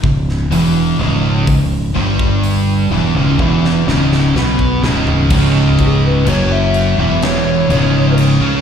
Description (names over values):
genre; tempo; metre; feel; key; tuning
stoner and doom metal; 63 BPM; 4/4; straight; C# minor; A4 = 440 Hz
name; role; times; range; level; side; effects
distorted electric guitar; riff; 0.0-8.6 s; C#2 to C#4; -22 LUFS; equal; overdrive, slapback echo
thick fuzz guitar; riff; 0.0-8.6 s; C#2 to C#4; -19 LUFS; left 8 dB; distortion
thick fuzz guitar; riff; 0.0-8.6 s; C#2 to C#4; -17 LUFS; right 7 dB; distortion
overdriven fingered electric bass; bass; 0.0-8.6 s; C#1 to C#2; -16 LUFS; left 1 dB; tube saturation
big rock drum kit; drums; 0.0-8.4 s; crash cymbal, hi-hat, kick drum, snare drum, toms; -21 LUFS; left 1 dB; none
fuzz lead guitar; melody; 5.8-8.2 s; G#4 to E5; -19 LUFS; left 3 dB; distortion, slapback echo, ping-pong delay
room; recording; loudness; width
studio ambience; live gig heard through the venue's PA, recital hall reverb; -11 LUFS; side -8 dB against mid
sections
0.0-5.3 A section; 5.3-8.6 B section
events
drum fill 3.4-5.3; lead electric guitar solo 5.3-8.6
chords
0.0 C#m